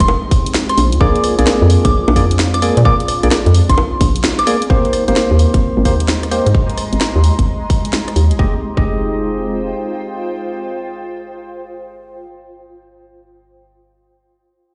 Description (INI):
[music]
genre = UK garage, two-step garage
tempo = 130 BPM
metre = 4/4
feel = swing 65% on 16ths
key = F dorian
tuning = A4 = 443 Hz
[part]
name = soft synth bell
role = melody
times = 0.0-4.6 s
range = C6 to D6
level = -23 LUFS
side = equal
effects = chorus, phaser, dub echo
[part]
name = warm analog pad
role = sustained chords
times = 0.0-11.9 s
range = Ab3 to G4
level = -27 LUFS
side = equal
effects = chorus, sidechain pumping
[part]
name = hollow knocking FM bass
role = bass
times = 0.0-9.7 s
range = F1 to Bb2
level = -16 LUFS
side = equal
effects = sidechain pumping
[part]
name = electronic kick drum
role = drums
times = 0.0-8.9 s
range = none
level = -16 LUFS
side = equal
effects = none
[part]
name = garage drum kit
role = drums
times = 0.0-8.4 s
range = bongos, hi-hat, rim click, snare drum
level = -22 LUFS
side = equal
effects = none
[part]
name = percussive organ stab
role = stabs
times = 1.0-12.3 s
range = Ab3 to Eb5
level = -22 LUFS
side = equal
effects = chorus, dub echo
[part]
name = granular cloud pad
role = texture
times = 5.3-12.1 s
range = Ab3 to C6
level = -28 LUFS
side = equal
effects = built-in reverb, sidechain pumping
[sound]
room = moderate digital room reverb, RT60 1.2 s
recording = played on a big sound system in a bare room, stone room reverb, nothing above 10.5 kHz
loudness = -14 LUFS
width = mono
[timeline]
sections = 0.0-4.7 A section; 4.7-8.4 B section; 8.4-12.1 C section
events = drop 0.0-4.7; band accent 4.2; filter sweep on FM bass 4.7-8.4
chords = 0.0 Fm9; 0.8 Bb7; 4.7 Abmaj9; 8.4 Fm9